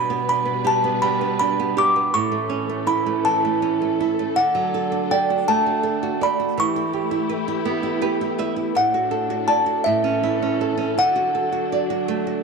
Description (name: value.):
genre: children's music, lullaby.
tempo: 54 BPM (dotted quarters).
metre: 6/8.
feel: straight.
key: D major.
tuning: A4 = 440 Hz.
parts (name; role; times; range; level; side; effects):
music box; melody; 0.0-12.4 s; E5 to D6; -21 LUFS; equal; none.
flamenco guitar; accompaniment; 0.0-12.4 s; A2 to E5; -23 LUFS; right 9 dB; none.
dark studio string section; sustained chords; 0.0-12.4 s; A2 to B4; -28 LUFS; left 14 dB; none.
room: light reverb, small room ambience.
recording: 1960s-style stereo with parts hard left and right.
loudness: -18 LUFS.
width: side -4 dB against mid.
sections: 0.0-12.4 A section.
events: nylon-string guitar fill 7.7-8.8, 12.1-12.4.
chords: 0.0 G/B; 2.1 A; 4.4 D; 6.6 Em; 8.8 D/A; 9.9 A; 11.0 D.